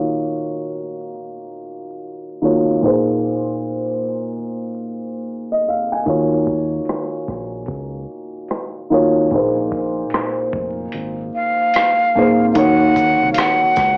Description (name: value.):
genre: lo-fi hip hop.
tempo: 74 BPM.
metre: 4/4.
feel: swing 62% on 16ths.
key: Eb dorian.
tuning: A4 = 440 Hz.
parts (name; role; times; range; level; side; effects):
felt-muted upright piano; accompaniment; 0.0-14.0 s; Bb2 to Ab5; -21 LUFS; equal; cassette tape, plate reverb.
deep dub fingered electric bass; bass; 6.1-14.0 s; F1 to Eb2; -30 LUFS; equal; tube saturation.
lo-fi sampler-style drum kit; drums; 6.1-14.0 s; hi-hat, kick drum, rim click, shaker; -26 LUFS; equal; cassette tape.
breathy mellow silver concert flute; melody; 11.4-14.0 s; F5 to Gb5; -18 LUFS; equal; cassette tape.
finger snap; percussion; 13.4-13.6 s; none; barely audible; none; none.
room: wet booth ambience, RT60 0.2 s.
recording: home recording on cassette, vinyl crackle, low-pass filter, small speaker sound.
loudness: -19 LUFS.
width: mono.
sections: 0.0-12.6 A section; 12.6-14.0 B section.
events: filter sweep 0.0-12.6; kick muted 10.9-12.6.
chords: 0.0 Ebm9; 2.8 Bb9sus4; 6.1 Ebm9; 9.3 Bb9sus4; 12.6 Ebm7.